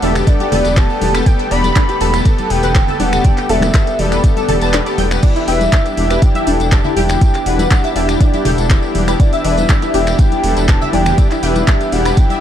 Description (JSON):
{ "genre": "progressive house", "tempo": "121 BPM", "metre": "4/4", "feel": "straight", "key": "E minor", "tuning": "A4 = 440 Hz", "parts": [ { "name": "warm velvety synth lead", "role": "melody", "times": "0.0-12.4 s", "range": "D5 to B5", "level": "-20 LUFS", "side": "equal", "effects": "chorus, sidechain pumping, digital delay" }, { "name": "filtered supersaw swell", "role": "sustained chords", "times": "0.0-12.4 s", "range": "D3 to A4", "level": "-24 LUFS", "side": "right 2 dB", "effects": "sidechain pumping" }, { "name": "wide unison pluck", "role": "arpeggios", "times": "0.0-12.4 s", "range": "D4 to A6", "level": "-22 LUFS", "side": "equal", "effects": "ensemble chorus, sidechain pumping, digital delay" }, { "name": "soft supersaw", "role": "stabs", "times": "0.0-12.4 s", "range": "B3 to D5", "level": "-20 LUFS", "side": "left 4 dB", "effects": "sidechain pumping, digital delay" }, { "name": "dark detuned saw bass", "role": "bass", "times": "0.0-12.1 s", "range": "E1", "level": "-18 LUFS", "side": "equal", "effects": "tube saturation, sidechain pumping" }, { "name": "deep house drum kit", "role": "drums", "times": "0.0-12.4 s", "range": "crash cymbal, finger snaps, handclaps, hi-hat", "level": "-23 LUFS", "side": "equal", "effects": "none" }, { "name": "tambourine", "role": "percussion", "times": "0.2-12.4 s", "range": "none", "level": "-32 LUFS", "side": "left 6 dB", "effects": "none" }, { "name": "electronic kick drum", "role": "drums", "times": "0.3-12.3 s", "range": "none", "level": "-12 LUFS", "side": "equal", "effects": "none" }, { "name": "congas and bongos", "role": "percussion", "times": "0.4-12.4 s", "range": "none", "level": "-26 LUFS", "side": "left 2 dB", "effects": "sidechain pumping on perc" } ], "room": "digital ambience", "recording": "dark, warm production", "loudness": "-11 LUFS", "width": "side -10 dB against mid", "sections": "0.0-12.4 A section", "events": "kick drops out 4.7-5.2", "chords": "0.0 Gadd9/E" }